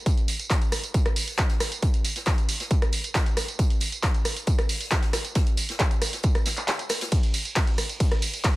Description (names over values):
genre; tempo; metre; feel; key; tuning
techno; 136 BPM; 4/4; straight; none; none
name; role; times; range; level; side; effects
electronic kick drum; drums; 0.1-8.5 s; none; -23 LUFS; equal; distortion, overdrive
jazz brush drum kit; drums; 0.1-8.6 s; hi-hat, snare drum; -38 LUFS; left 2 dB; sidechain pumping on hats, high-pass filter on hats, high-pass filter on snare, high-pass filter on room
punchy analog drum machine; drums; 0.1-8.5 s; handclaps, hi-hat, ride cymbal, rim click, tambourine; -27 LUFS; right 1 dB; sidechain pumping on hats, sidechain pumping on perc, sidechain pumping on cymbals
room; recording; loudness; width
little or no reverb; none; -22 LUFS; side -19 dB against mid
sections
0.0-8.6 A section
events
break 6.7-7.1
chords
none